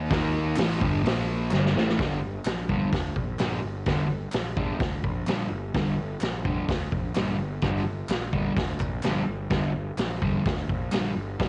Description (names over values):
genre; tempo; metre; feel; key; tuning
garage rock duo or trio; 128 BPM; 4/4; straight; G minor; A4 = 440 Hz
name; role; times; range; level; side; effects
fuzz guitar; riff; 0.0-11.5 s; G2 to Eb4; -29 LUFS; equal; distortion, cassette tape
fuzz picked electric bass; bass; 0.0-11.5 s; G1 to Eb2; -34 LUFS; equal; overdrive
vintage drum kit; drums; 0.1-11.5 s; hi-hat, kick drum, snare drum; -31 LUFS; equal; cassette tape
group handclap; percussion; 0.6-11.0 s; none; -43 LUFS; equal; none
room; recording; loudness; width
small room reverb; home recording on cassette, nothing above 10.7 kHz; -27 LUFS; mono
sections
0.0-2.0 A section; 2.0-11.5 B section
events
drum fill 1.5-2.0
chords
0.0 Eb5; 0.6 G5; 1.0 Bb5; 1.5 G5; 2.0 Gm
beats
| 0.10 0.57 1.04 1.51 | 1.98 2.45 2.92 3.39 | 3.86 4.33 4.80 5.27 | 5.74 6.21 6.68 7.16 | 7.62 8.10 8.57 9.04 | 9.51 9.98 10.45 10.92 | 11.39